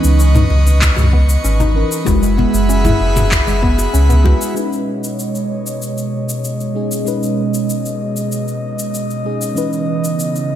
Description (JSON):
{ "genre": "sunset chillout", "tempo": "96 BPM", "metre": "4/4", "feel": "straight", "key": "B major", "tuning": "A4 = 439 Hz", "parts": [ { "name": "mellow FM electric piano", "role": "accompaniment", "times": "0.0-10.6 s", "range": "E3 to B4", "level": "-21 LUFS", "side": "moving between left 4 dB and right 7 dB", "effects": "chorus, phaser, auto-pan, tape echo, slapback echo" }, { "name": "airy breathy pad", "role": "sustained chords", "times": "0.0-10.6 s", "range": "B2 to C#6", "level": "-21 LUFS", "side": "equal", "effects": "chorus" }, { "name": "soft round pluck", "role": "arpeggios", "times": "0.0-4.2 s", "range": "G#3 to E4", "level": "-23 LUFS", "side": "left 2 dB", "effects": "wide subtle chorus, tape echo" }, { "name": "warm sub bass", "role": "bass", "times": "0.0-4.3 s", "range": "F#1 to C#2", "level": "-13 LUFS", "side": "equal", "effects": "none" }, { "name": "deep house drum kit", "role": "drums", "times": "0.0-10.5 s", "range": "handclaps, shaker, toms", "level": "-22 LUFS", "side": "equal", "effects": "overdrive" }, { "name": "congas and bongos", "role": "percussion", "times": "0.3-4.4 s", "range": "none", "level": "-24 LUFS", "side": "left 1 dB", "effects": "none" }, { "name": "electronic kick drum", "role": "drums", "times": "0.8-4.4 s", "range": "none", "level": "-18 LUFS", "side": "equal", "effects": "overdrive" } ], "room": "light reverb, digital ambience", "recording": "none", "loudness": "-13 LUFS", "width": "side -11 dB against mid", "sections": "0.0-4.6 A section; 4.6-10.6 B section", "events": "none", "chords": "0.0 C#m9; 2.1 F#9sus4; 4.6 B69; 9.6 C#m9", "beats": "0.19 0.82 1.44 | 2.07 2.69 3.32 3.94 | 4.57 5.19 5.82 6.44 | 7.07 7.69 8.32 8.94 | 9.57 10.19" }